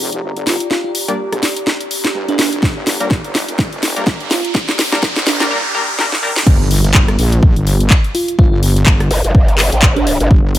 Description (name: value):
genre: bass house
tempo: 125 BPM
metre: 4/4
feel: swing 57% on 16ths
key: G minor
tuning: A4 = 436 Hz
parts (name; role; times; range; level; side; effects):
- wobble bass; bass; 0.0-10.6 s; F1 to Bb1; -17 LUFS; equal; chorus, sidechain pumping, high-pass filter
- riser, noise sweep and impact; sound effects; 1.6-8.4 s; none; -24 LUFS; right 1 dB; none
- warbly tape-like pad; texture; 0.0-5.5 s; G4 to Bb5; -26 LUFS; right 1 dB; chorus, built-in reverb, phaser, sidechain pumping
- house drum kit; drums; 0.1-10.6 s; crash cymbal, handclaps, hi-hat, rim click, snare drum; -17 LUFS; left 1 dB; overdrive
- bell-like FM electric piano; melody; 0.5-10.6 s; D4 to F4; -21 LUFS; right 2 dB; chorus, dub echo
- band-passed chord stab; stabs; 1.1-6.3 s; G3 to D5; -21 LUFS; left 2 dB; chorus, sidechain pumping, dub echo
- electronic kick drum; drums; 2.6-10.4 s; none; -11 LUFS; equal; overdrive
- growl bass; bass; 9.1-10.3 s; G1 to A1; -14 LUFS; equal; chorus, overdrive, sidechain pumping
room: digital ambience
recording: high-pass filter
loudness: -12 LUFS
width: side -14 dB against mid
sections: 0.0-6.5 A section; 6.5-10.6 B section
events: build-up 0.0-6.5; drum fill 0.0-5.5, 6.0-6.5; filter sweep on synth stab 0.0-6.5; riser 1.6-6.5; noise sweep 4.5-6.5; drop 6.5-10.6; impact 6.5-8.4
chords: 0.0 Gm; 6.5 N.C.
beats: 0.23 | 0.71 1.19 1.67 2.15 | 2.63 3.11 3.59 4.07 | 4.55 5.03 5.51 5.99 | 6.47 6.95 7.43 7.91 | 8.39 8.87 9.35 9.83 | 10.31